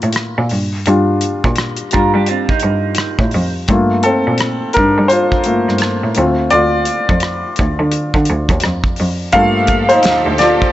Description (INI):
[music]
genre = R&B, neo-soul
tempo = 85 BPM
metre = 4/4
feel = swing 60% on 16ths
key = G minor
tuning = A4 = 444 Hz
[part]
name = warm grand piano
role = accompaniment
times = 0.0-10.7 s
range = G3 to F5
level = -15 LUFS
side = left 1 dB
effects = none
[part]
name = rich cello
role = bass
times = 0.0-10.6 s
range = D2 to G3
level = -18 LUFS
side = right 1 dB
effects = none
[part]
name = damped 70s drum kit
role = drums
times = 0.0-10.7 s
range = hi-hat, kick drum, rim click, snare drum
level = -18 LUFS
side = equal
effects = none
[part]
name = electric guitar through a small old amp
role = second line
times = 1.9-3.5 s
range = Bb3 to Bb4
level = -19 LUFS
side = right 8 dB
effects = wide subtle chorus
[part]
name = clear studio string section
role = sustained chords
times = 9.3-10.7 s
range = Bb2 to A4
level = -21 LUFS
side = right 3 dB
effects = none
[sound]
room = light reverb, studio reverb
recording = nothing above 7.9 kHz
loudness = -12 LUFS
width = side -14 dB against mid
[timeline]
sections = 0.0-9.3 A section; 9.3-10.7 B section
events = grand piano solo 0.0-9.3, 9.3-10.7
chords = 0.0 Gm9 (rootless); 0.5 Ebmaj7/G; 3.7 Gm9; 6.2 Dm7; 9.3 Gm9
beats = 0.15 | 0.86 1.57 2.27 2.98 | 3.68 4.39 5.10 5.80 | 6.51 7.21 7.92 8.62 | 9.33 10.04